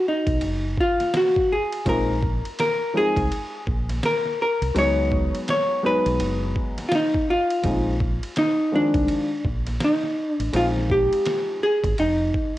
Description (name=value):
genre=hip hop, jazz-hop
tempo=83 BPM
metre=4/4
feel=swing 61% on 16ths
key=unclear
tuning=A4 = 441 Hz
part: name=vintage hollow-body jazz guitar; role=melody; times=0.0-12.6 s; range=D4 to Db5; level=-22 LUFS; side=equal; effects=cassette tape
part: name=deep dub fingered electric bass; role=bass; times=0.3-12.3 s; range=F1 to Db2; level=-25 LUFS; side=equal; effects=none
part: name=trip hop sampler-style drum kit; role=drums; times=0.3-12.5 s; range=hi-hat, kick drum, ride cymbal, snare drum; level=-29 LUFS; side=equal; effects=cassette tape
part: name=dark upright piano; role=accompaniment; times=1.9-11.6 s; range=Eb3 to Eb4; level=-26 LUFS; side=left 1 dB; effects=none
room=light reverb, digital ambience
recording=home recording on cassette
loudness=-20 LUFS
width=side -15 dB against mid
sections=0.0-12.6 A section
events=none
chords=0.0 Db9sus4 (rootless); 1.9 Bb9sus4; 4.8 Db9sus4; 7.6 Bb9sus4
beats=0.42 1.14 | 1.86 2.58 3.31 4.03 | 4.75 5.48 6.20 6.92 | 7.64 8.37 9.09 9.81 | 10.54 11.26 11.98